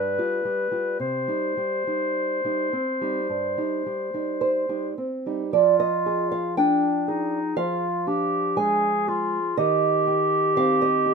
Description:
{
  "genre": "romantic duo for clarinet and classical guitar",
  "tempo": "52-62 BPM",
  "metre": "4/4",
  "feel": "rubato",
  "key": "unclear",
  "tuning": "A4 = 440 Hz",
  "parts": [
    { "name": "warm clarinet", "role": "melody", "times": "0.0-11.1 s", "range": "D4 to C5", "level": "-24 LUFS", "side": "left 2 dB", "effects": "none" },
    { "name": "nylon-string guitar", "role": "accompaniment", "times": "0.0-11.1 s", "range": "G2 to Ab5", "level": "-24 LUFS", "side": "right 4 dB", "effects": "none" }
  ],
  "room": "moderate studio reverb, RT60 0.6 s",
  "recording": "minimal, uncompressed stereo recording",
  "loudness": "-21 LUFS",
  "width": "side -5 dB against mid",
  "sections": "0.0-5.5 A section; 5.5-11.1 B section",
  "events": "none",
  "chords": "0.0 G7; 1.0 Cm; 5.5 Ddim/F; 9.6 Cm/Eb"
}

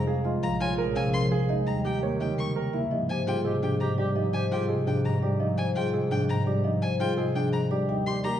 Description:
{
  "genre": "classical, minimalist pattern music",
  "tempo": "338 BPM (eighths)",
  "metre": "7/8",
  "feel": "straight",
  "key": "Ab lydian",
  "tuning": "A4 = 440 Hz",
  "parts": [
    { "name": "vibraphone with soft mallets", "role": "melody", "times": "0.0-8.4 s", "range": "Ab4 to G5", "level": "-32 LUFS", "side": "left 6 dB", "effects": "none" },
    { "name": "warm clarinet", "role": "second line", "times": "0.0-5.2, 7.9-8.4 s", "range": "G4 to Ab4", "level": "-36 LUFS", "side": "right 3 dB", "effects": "none" },
    { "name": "marimba with soft mallets", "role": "accompaniment", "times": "0.0-8.4 s", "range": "C3 to Bb3", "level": "-28 LUFS", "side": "equal", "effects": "none" },
    { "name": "rich violin", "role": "arpeggios", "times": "0.0-8.4 s", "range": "G5 to Db6", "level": "-36 LUFS", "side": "left 3 dB", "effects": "none" },
    { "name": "clear studio double bass section", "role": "bass", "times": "0.0-8.4 s", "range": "Bb1 to Ab2", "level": "-33 LUFS", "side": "right 2 dB", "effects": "none" },
    { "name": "dark baby grand piano", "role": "arpeggios", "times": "0.1-8.4 s", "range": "Db4 to Db5", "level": "-32 LUFS", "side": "right 6 dB", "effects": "none" }
  ],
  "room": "wet recital hall reverb, RT60 1.5 s",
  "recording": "recorded in a church or concert hall, nothing above 10.9 kHz",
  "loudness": "-24 LUFS",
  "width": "side -10 dB against mid",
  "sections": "0.0-2.9 A section; 2.9-8.4 B section",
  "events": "none",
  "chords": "0.4 Bbm9; 1.7 Eb7b9; 2.9 Abmaj7#11; 7.9 Ebmaj7"
}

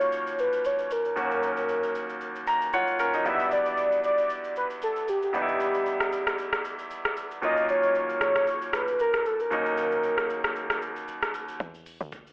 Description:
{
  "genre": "amapiano",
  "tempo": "115 BPM",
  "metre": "4/4",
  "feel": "swing 55% on 16ths",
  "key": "unclear",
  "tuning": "A4 = 440 Hz",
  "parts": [
    { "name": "warm velvety synth lead", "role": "melody", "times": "0.0-11.3 s", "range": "G4 to E5", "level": "-26 LUFS", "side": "equal", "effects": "chorus, digital delay" },
    { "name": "clear grand piano", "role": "accompaniment", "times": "0.0-11.6 s", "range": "D#2 to A#5", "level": "-28 LUFS", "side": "equal", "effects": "none" },
    { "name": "smooth R&B drum kit", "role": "drums", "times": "0.0-12.3 s", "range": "hi-hat, kick drum, rim click, shaker", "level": "-31 LUFS", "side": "equal", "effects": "none" },
    { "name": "tight log drum bass", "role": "bass", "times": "11.6-12.3 s", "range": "D2 to E2", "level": "-37 LUFS", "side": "equal", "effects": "none" }
  ],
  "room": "moderate plate reverb, RT60 1.3 s",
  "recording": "telephone sound",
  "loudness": "-24 LUFS",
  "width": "side -24 dB against mid",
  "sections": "0.0-11.6 A section",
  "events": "grand piano fill 2.2-3.3",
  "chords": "0.0 D#m7; 3.3 Em7; 7.4 D#m7; 11.6 Dsus2"
}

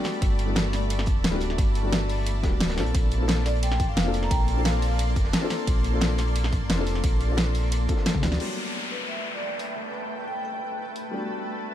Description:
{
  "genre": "liquid drum and bass",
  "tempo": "176 BPM",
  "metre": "4/4",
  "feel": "straight",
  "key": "unclear",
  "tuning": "A4 = 440 Hz",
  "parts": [
    { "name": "dark baby grand piano", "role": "accompaniment", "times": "0.0-11.7 s", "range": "F#3 to A4", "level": "-32 LUFS", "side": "left 3 dB", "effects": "digital delay" },
    { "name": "shimmering ambient pad", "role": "sustained chords", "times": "0.0-11.7 s", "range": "A3 to C6", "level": "-34 LUFS", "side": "left 1 dB", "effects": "chorus, built-in reverb, sidechain pumping" },
    { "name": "crunchy breakbeat drum kit", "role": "drums", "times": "0.0-8.4 s", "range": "hi-hat, snare drum", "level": "-38 LUFS", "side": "equal", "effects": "high-pass filter on hats, high-pass filter on snare, high-pass filter on room" },
    { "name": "pop drum kit", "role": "drums", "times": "0.0-11.0 s", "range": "crash cymbal, hi-hat, ride cymbal, snare drum, toms", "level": "-29 LUFS", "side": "equal", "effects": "none" },
    { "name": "sub bass with octave", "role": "bass", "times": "0.2-8.4 s", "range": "D1 to D2", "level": "-26 LUFS", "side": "equal", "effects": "tube saturation" },
    { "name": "electronic kick drum", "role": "drums", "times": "0.2-8.2 s", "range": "none", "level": "-25 LUFS", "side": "equal", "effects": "none" },
    { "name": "vibraphone with medium hard mallets", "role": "melody", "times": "3.5-5.1, 8.9-10.9 s", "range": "B4 to Bb5", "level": "-34 LUFS", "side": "equal", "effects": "dub echo" },
    { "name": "downlifter", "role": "sound effects", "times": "8.4-11.1 s", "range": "none", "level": "-34 LUFS", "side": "left 1 dB", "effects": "none" }
  ],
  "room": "little or no reverb",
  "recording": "dark, warm production",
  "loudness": "-23 LUFS",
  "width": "side -11 dB against mid",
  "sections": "0.0-8.4 A section; 8.4-11.7 B section",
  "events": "drop 0.0-8.4; drum fill 8.1",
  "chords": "0.0 Gmaj9; 2.8 Bbmaj9; 8.4 Gmaj9"
}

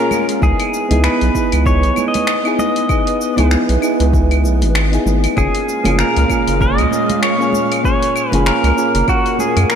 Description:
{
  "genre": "sunset chillout",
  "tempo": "97 BPM",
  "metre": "4/4",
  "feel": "swing 58% on 16ths",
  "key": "F# major",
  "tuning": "A4 = 440 Hz",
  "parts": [
    { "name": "pedal steel guitar", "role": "melody", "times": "0.0-9.8 s", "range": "F#4 to D#5", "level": "-19 LUFS", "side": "equal", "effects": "tape echo, slapback echo" },
    { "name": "soft electric-piano-like synth keys", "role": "accompaniment", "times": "0.0-9.8 s", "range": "A#3 to G#4", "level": "-19 LUFS", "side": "moving between left 5 dB and right 6 dB", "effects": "chorus, auto-pan, tape echo, slapback echo" },
    { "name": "soft string machine", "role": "sustained chords", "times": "0.0-9.8 s", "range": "A#2 to E#5", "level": "-23 LUFS", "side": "equal", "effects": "phaser, ensemble chorus" },
    { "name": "deep house drum kit", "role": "drums", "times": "0.1-9.8 s", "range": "cabasa, claves, finger snaps, hi-hat", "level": "-23 LUFS", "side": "left 1 dB", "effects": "overdrive" },
    { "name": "congas", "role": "percussion", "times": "0.1-9.7 s", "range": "none", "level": "-27 LUFS", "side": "right 5 dB", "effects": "slapback echo" },
    { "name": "round analog bass", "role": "bass", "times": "0.4-9.7 s", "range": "F#1 to F#2", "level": "-15 LUFS", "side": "equal", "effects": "none" },
    { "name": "electronic kick drum", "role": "drums", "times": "0.4-9.2 s", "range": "none", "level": "-19 LUFS", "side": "equal", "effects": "overdrive" }
  ],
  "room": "moderate lush hall reverb, RT60 2.7 s",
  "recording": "big arena sound",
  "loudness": "-13 LUFS",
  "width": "side -8 dB against mid",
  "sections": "0.0-9.8 A section",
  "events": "none",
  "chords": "0.4 C#m9; 5.4 F#maj9"
}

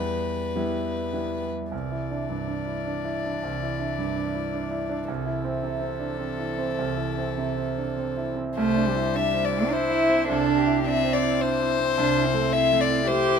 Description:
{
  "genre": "neoclassical piano and strings",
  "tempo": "106 BPM",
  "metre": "3/4",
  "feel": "rubato",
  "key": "unclear",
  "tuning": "A4 = 440 Hz",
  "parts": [
    { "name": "warm violin", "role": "melody", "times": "0.0-13.4 s", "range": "G4 to E5", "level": "-28 LUFS", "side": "left 9 dB", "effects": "none" },
    { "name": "rich cello", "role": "second line", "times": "0.0-13.4 s", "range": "E3 to G4", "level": "-28 LUFS", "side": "right 4 dB", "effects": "none" },
    { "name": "clear concert grand piano", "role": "accompaniment", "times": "0.0-13.4 s", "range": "C2 to E4", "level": "-27 LUFS", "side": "right 2 dB", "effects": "none" }
  ],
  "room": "moderate large studio reverb, RT60 1.1 s",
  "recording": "minimal, uncompressed stereo recording",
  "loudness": "-23 LUFS",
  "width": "side -6 dB against mid",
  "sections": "0.0-1.7 A section; 1.7-8.6 B section; 8.6-13.4 C section",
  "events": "none",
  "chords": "0.0 Em; 1.7 Cadd9; 5.1 Am/C"
}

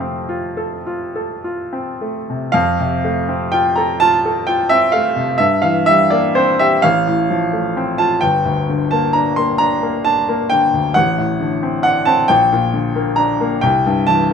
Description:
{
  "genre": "classical, romantic nocturne for solo piano",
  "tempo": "35-46 BPM (dotted quarters)",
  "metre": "12/8",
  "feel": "rubato",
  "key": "F major",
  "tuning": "A4 = 440 Hz",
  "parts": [
    { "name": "bright grand piano", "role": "solo", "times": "0.0-14.3 s", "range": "G1 to C6", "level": "-14 LUFS", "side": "equal", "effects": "none" }
  ],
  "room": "light reverb",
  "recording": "minimal, uncompressed stereo recording",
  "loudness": "-14 LUFS",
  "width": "side -6 dB against mid",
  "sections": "0.0-2.5 A section; 2.5-14.3 B section",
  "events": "none",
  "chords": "0.0 F; 5.4 C7/G; 6.8 F/A; 8.2 Gm; 11.0 D7/A; 12.3 Gm/Bb; 13.6 C"
}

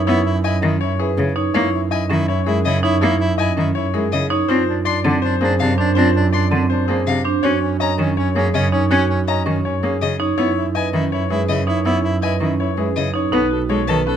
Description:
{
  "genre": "classical, minimalist pattern music",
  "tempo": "163 BPM",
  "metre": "4/4",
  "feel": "straight",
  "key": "unclear",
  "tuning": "A4 = 441 Hz",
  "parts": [
    { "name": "bright grand piano", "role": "melody", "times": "0.0-14.2 s", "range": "G#4 to D#5", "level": "-25 LUFS", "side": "left 13 dB", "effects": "none" },
    { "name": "clear soprano saxophone", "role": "second line", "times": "0.0-14.2 s", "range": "C#4 to A4", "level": "-26 LUFS", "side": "equal", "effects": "none" },
    { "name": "marimba with medium hard mallets", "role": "arpeggios", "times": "0.0-14.2 s", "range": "B#3 to C#5", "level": "-22 LUFS", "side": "right 6 dB", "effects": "none" },
    { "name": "rich double bass", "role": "bass", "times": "0.0-14.2 s", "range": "B1 to F#2", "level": "-21 LUFS", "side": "right 2 dB", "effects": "none" },
    { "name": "rich cello", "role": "accompaniment", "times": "0.1-14.0 s", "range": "B#2 to C#4", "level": "-22 LUFS", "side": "left 2 dB", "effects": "none" },
    { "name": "rich violin", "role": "arpeggios", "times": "0.4-14.0 s", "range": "D#5 to B#5", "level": "-25 LUFS", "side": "left 8 dB", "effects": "none" }
  ],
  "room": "light reverb",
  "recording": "close, detailed microphones",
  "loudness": "-16 LUFS",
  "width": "side -9 dB against mid",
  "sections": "0.0-13.3 A section",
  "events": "none",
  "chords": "0.0 C#m9/F#; 1.5 F#13; 4.5 A#/F# (rootless); 7.4 D#m7/F#; 10.4 C#m9/F#; 13.3 B13"
}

